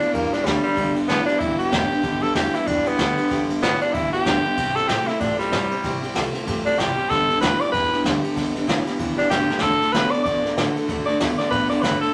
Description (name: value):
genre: rockabilly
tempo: 190 BPM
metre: 4/4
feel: swing 60% on 8ths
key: G major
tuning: A4 = 441 Hz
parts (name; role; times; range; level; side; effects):
- raspy tenor saxophone; melody; 0.0-12.1 s; G3 to D5; -24 LUFS; equal; none
- picked steel-string acoustic guitar; accompaniment; 0.0-12.1 s; G2 to A4; -30 LUFS; equal; none
- electric guitar through a small old amp; riff; 0.0-12.1 s; G2 to B3; -29 LUFS; equal; none
- upright bass; bass; 0.0-12.0 s; F#1 to C3; -38 LUFS; equal; none
- jazz brush drum kit; drums; 0.0-12.1 s; kick drum, ride cymbal, snare drum; -28 LUFS; equal; none
room: wet club reverb, RT60 0.8 s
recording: none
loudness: -21 LUFS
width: mono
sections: 0.0-12.1 A section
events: tenor saxophone solo 0.0-12.1; drum fill 9.5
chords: 0.0 G; 4.6 C; 7.1 G; 9.6 D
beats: 0.14 0.46 | 0.77 1.09 1.41 1.72 | 2.04 2.35 2.67 2.99 | 3.31 3.62 3.94 4.25 | 4.57 4.89 5.20 5.52 | 5.83 6.15 6.47 6.78 | 7.10 7.42 7.73 8.05 | 8.36 8.68 8.99 9.31 | 9.62 9.94 10.26 10.57 | 10.89 11.20 11.52 11.83